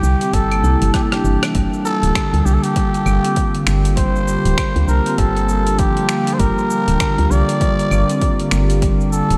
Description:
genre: organic downtempo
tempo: 99 BPM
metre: 4/4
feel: swing 60% on 16ths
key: G dorian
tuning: A4 = 437 Hz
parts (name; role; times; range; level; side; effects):
- trumpet with cup mute; melody; 0.0-9.4 s; G4 to D5; -24 LUFS; equal; vintage 12-bit sampler grit, tape echo
- warm analog pad; sustained chords; 0.0-9.4 s; C3 to G4; -26 LUFS; equal; chorus, sidechain pumping
- woody FM bass; bass; 0.0-9.4 s; D1 to D2; -19 LUFS; equal; sidechain pumping
- dusty soul sampler-style drum kit; drums; 0.0-9.4 s; claves, finger snaps, hi-hat, rim click, shaker; -28 LUFS; equal; overdrive, studio reverb
- marimba with soft mallets; arpeggios; 0.2-9.3 s; D3 to E4; -23 LUFS; equal; tape echo
- electronic kick drum; drums; 0.3-9.0 s; none; -22 LUFS; equal; overdrive, studio reverb
room: moderate cathedral reverb, RT60 6.9 s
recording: dreamy mix soaked in reverb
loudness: -17 LUFS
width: mono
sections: 0.0-1.5 A section; 1.5-9.4 B section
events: drum fill 0.9-1.5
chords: 0.0 C; 1.5 Gm7

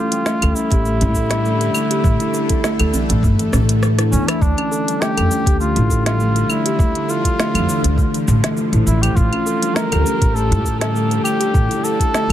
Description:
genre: organic downtempo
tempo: 101 BPM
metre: 4/4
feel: swing 53% on 16ths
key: unclear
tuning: A4 = 439 Hz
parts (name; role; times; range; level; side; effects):
- trumpet with cup mute; melody; 0.0-12.3 s; C#4 to Bb4; -23 LUFS; equal; vintage 12-bit sampler grit, digital delay
- bowed-like drone; sustained chords; 0.0-12.3 s; D3 to A4; -25 LUFS; left 1 dB; built-in reverb, phaser, sidechain pumping
- kalimba; arpeggios; 0.0-12.3 s; E3 to A4; -21 LUFS; left 1 dB; ping-pong delay
- organic electronic drum kit; drums; 0.1-12.3 s; cabasa, claves, hi-hat, rim click, snare drum; -23 LUFS; equal; none
- upright bass; bass; 0.4-12.3 s; G1 to A2; -18 LUFS; equal; sidechain pumping
- electronic kick drum; drums; 0.7-12.1 s; none; -17 LUFS; equal; none
- djembe; percussion; 0.7-4.2 s; none; -26 LUFS; right 1 dB; none
room: light reverb, studio reverb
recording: none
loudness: -14 LUFS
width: side -11 dB against mid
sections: 0.0-4.4 A section; 4.4-12.3 A section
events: drum fill 3.5-4.4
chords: 0.0 A7sus4

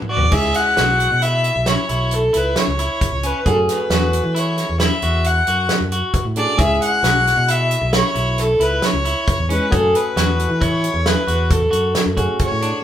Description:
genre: progressive instrumental, band music in an uneven meter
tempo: 134 BPM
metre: 7/4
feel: straight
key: unclear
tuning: A4 = 440 Hz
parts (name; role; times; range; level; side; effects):
- warm grand piano; accompaniment; 0.0-12.8 s; D3 to A4; -26 LUFS; right 1 dB; none
- natural country drum kit; drums; 0.0-12.7 s; crash cymbal, hi-hat, kick drum, snare drum, toms; -21 LUFS; equal; none
- warm violin; melody; 0.1-12.8 s; A4 to F#5; -19 LUFS; equal; none
- electric guitar at the edge of break-up; arpeggios; 0.1-12.8 s; C#4 to G#4; -24 LUFS; equal; tape echo
- fingered electric bass; bass; 0.2-12.7 s; B1 to E3; -21 LUFS; equal; none
room: wet studio reverb, RT60 0.6 s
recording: band playing live in one room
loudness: -15 LUFS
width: side -10 dB against mid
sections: 0.3-12.8 A section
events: drum fill 0.0-0.3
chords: 0.3 C#m; 3.5 F#madd9; 6.6 C#m; 9.7 F#madd9

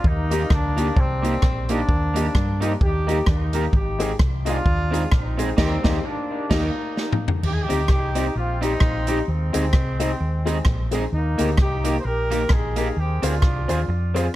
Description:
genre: ska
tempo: 130 BPM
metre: 4/4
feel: swing 58% on 8ths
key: Eb major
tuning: A4 = 440 Hz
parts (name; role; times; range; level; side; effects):
- warm horn section; melody; 0.0-13.9 s; G3 to C5; -27 LUFS; equal; tape echo
- hollow-body short-scale fingered electric bass; bass; 0.0-14.3 s; Ab1 to G2; -24 LUFS; equal; none
- swinging big-band drum kit; drums; 0.0-14.2 s; crash cymbal, hi-hat, kick drum, rim click, snare drum, toms; -22 LUFS; equal; none
- electric guitar at the edge of break-up; accompaniment; 0.3-14.3 s; Bb3 to Ab4; -29 LUFS; right 4 dB; tape echo
- dark upright piano; stabs; 0.3-14.3 s; G3 to C5; -29 LUFS; left 4 dB; tape echo
room: light reverb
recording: dark, warm production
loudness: -19 LUFS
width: side -15 dB against mid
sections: 0.0-7.4 A section; 7.4-14.4 B section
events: band accent 5.6-7.4; drum fill 7.0-7.4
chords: 0.0 Eb; 3.7 Ab; 5.6 Eb; 7.4 Cm; 9.3 Ab; 11.1 Eb; 13.0 Fm

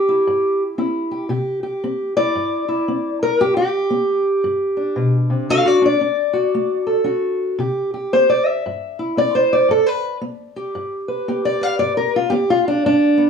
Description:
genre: acoustic country blues, solo or duo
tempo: 114 BPM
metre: 4/4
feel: swing 62% on 8ths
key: G major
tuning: A4 = 440 Hz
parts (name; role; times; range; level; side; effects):
- fingerpicked steel-string acoustic guitar; solo; 0.0-13.3 s; G2 to F5; -16 LUFS; left 1 dB; none
room: light reverb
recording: worn, warbling old tape, cassette tape, warbly pitch drift, small room ambience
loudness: -16 LUFS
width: side -6 dB against mid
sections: 0.0-13.3 A section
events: steel-string acoustic guitar solo 0.0-13.3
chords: 0.0 C; 3.4 G; 5.5 D; 7.6 C; 9.7 G

